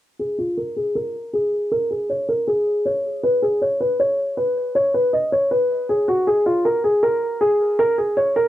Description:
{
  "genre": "hip hop",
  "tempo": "158 BPM",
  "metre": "4/4",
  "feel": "half-time",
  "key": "unclear",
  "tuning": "A4 = 440 Hz",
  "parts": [
    { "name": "felt-muted upright piano", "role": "melody", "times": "0.2-8.5 s", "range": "F4 to Eb5", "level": "-18 LUFS", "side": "equal", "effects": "low-pass filter, cassette tape" }
  ],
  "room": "moderate booth ambience, RT60 0.2 s",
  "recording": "home recording on cassette",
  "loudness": "-18 LUFS",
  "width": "side -13 dB against mid",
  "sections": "0.2-8.5 A section",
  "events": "filter sweep on felt piano 0.2-8.5",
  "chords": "none"
}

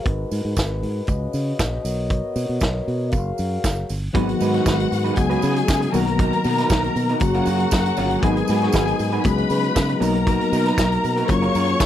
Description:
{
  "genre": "disco",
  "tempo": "118 BPM",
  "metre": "4/4",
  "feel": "straight",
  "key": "G# dorian",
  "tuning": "A4 = 440 Hz",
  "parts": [
    { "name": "mellow French horn section", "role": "sustained chords", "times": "0.0-11.9 s", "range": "B2 to E#5", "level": "-28 LUFS", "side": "left 2 dB", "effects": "stereo widening" },
    { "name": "fingered electric bass", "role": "bass", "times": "0.1-11.9 s", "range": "F#1 to C#3", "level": "-24 LUFS", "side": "right 1 dB", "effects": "none" },
    { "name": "vintage drum kit", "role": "drums", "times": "0.1-11.9 s", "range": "hi-hat, kick drum, snare drum", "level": "-24 LUFS", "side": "right 1 dB", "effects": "none" },
    { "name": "tambourine", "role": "percussion", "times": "0.3-11.9 s", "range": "none", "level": "-36 LUFS", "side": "right 20 dB", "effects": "none" },
    { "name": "warm studio string section", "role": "second line", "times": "4.1-11.9 s", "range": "F#4 to C#6", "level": "-24 LUFS", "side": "left 3 dB", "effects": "none" },
    { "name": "electric guitar through a small old amp", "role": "accompaniment", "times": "4.1-11.8 s", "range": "F#3 to C#5", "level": "-26 LUFS", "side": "right 8 dB", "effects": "none" },
    { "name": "reed electric piano", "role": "accompaniment", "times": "4.1-11.9 s", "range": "C#3 to A#4", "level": "-23 LUFS", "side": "left 4 dB", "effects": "fast tremolo" }
  ],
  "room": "little or no reverb",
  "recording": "dry, close 1970s-style studio recording",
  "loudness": "-18 LUFS",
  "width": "side -11 dB against mid",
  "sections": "0.0-4.1 A section; 4.1-11.9 B section",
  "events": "none",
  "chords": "0.1 G#m7; 1.1 C#7sus4; 1.8 Bmaj7; 3.1 F#maj7; 4.1 G#m7; 5.2 C#7sus4; 5.9 Bmaj7; 7.2 F#maj7; 8.2 G#m7; 9.2 C#7sus4; 10.0 Bmaj7; 11.3 F#maj7"
}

